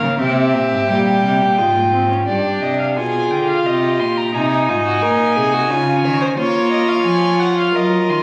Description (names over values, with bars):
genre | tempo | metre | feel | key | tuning
classical, baroque-style fugue for string quartet | 87 BPM | 3/4 | straight | unclear | A4 = 440 Hz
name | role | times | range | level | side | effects
dark violin | melody | 0.0-8.2 s | Db5 to C6 | -22 LUFS | equal | none
warm violin | second line | 0.0-8.2 s | Eb4 to Db5 | -24 LUFS | equal | none
warm viola | accompaniment | 0.0-8.2 s | G3 to F4 | -21 LUFS | equal | none
rich cello | bass | 0.0-8.2 s | G2 to Bb3 | -23 LUFS | equal | none
room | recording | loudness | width
wet recital hall reverb, RT60 1.5 s | recorded on a phone in the room, studio reverb, vinyl crackle | -16 LUFS | mono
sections
0.0-2.3 A section; 2.3-8.2 B section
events
none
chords
0.2 C7; 1.6 Fm/Ab; 2.3 G7; 3.7 Cm; 4.3 Ab7; 5.7 Db; 6.4 Bbm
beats
| 0.19 0.89 1.58 | 2.28 2.97 3.66 | 4.34 5.03 5.71 | 6.38 7.06 7.75